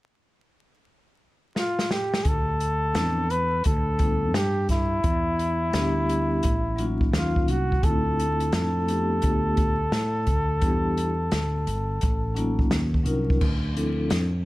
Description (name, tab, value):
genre	hip hop, jazz-hop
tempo	86 BPM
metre	4/4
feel	swing 65% on 16ths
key	D dorian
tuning	A4 = 442 Hz
part	breathy flugelhorn	melody	1.6-12.7 s	E4 to B4	-27 LUFS	equal	none
part	open jazz drum kit	drums	1.6-14.3 s	crash cymbal, hi-hat, kick drum, snare drum	-26 LUFS	equal	none
part	mellow fretless electric bass	bass	2.3-14.4 s	G1 to A2	-26 LUFS	equal	none
part	vibraphone with soft mallets	accompaniment	2.9-14.2 s	F3 to Bb4	-29 LUFS	left 1 dB	none
room	small room ambience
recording	dark, warm production, vinyl crackle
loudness	-22 LUFS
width	side -18 dB against mid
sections	0.0-2.3 A section; 2.3-13.4 B section; 13.4-14.4 C section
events	drum fill 1.6-2.3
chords	0.0 N.C.; 2.3 Dm9; 3.6 G9/D; 5.0 Em7; 6.4 A; 7.1 Ebm9; 7.8 Dm9; 9.2 G9/D; 10.6 Em7; 12.0 A; 12.7 Ebm9; 13.4 Dm9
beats	0.16 0.86 1.56 | 2.25 2.95 3.65 4.35 | 5.04 5.74 6.44 7.14 | 7.84 8.53 9.23 9.93 | 10.63 11.32 12.02 12.72 | 13.42 14.12